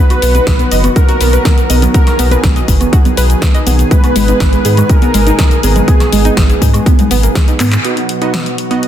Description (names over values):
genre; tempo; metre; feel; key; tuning
progressive house; 122 BPM; 4/4; straight; B major; A4 = 441 Hz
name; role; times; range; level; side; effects
wide unison lead; melody; 0.0-6.3 s; G#4 to B4; -17 LUFS; equal; sidechain pumping, ping-pong delay
lush unison pad; sustained chords; 0.0-8.9 s; B2 to G#4; -19 LUFS; equal; chorus, sidechain pumping
analog pluck; arpeggios; 0.0-7.7 s; G#3 to D#5; -17 LUFS; equal; chorus, sidechain pumping, ping-pong delay
house drum kit; drums; 0.1-8.9 s; handclaps, hi-hat, shaker, snare drum; -19 LUFS; left 2 dB; studio reverb
woodblock and congas; percussion; 0.1-7.7 s; none; -23 LUFS; right 5 dB; sidechain pumping on perc
round analog bass; bass; 0.2-7.8 s; F#1 to G#2; -12 LUFS; equal; sidechain pumping
electronic kick drum; drums; 0.5-7.5 s; none; -10 LUFS; equal; overdrive, studio reverb
supersaw stab; stabs; 7.8-8.8 s; B3 to D#5; -16 LUFS; right 4 dB; sidechain pumping, ping-pong delay
room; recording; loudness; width
light reverb; dense, heavily limited modern master; -8 LUFS; side -10 dB against mid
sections
0.0-7.8 A section; 7.8-8.9 B section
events
drum fill 7.6; band accent 7.7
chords
0.0 B; 3.9 G#madd9; 7.8 B